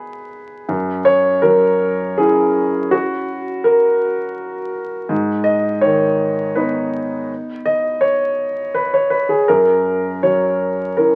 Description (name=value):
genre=neoclassical minimalist piano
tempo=82 BPM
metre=3/4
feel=rubato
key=unclear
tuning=A4 = 440 Hz
part: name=warm concert grand piano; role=solo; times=0.0-11.2 s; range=F#2 to D#5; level=-18 LUFS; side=equal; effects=none
room=moderate studio reverb, RT60 0.6 s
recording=very old 78 rpm record, vinyl crackle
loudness=-17 LUFS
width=mono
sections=0.0-11.2 A section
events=none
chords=0.0 G#m; 0.7 F#7; 5.1 G#m; 9.5 F#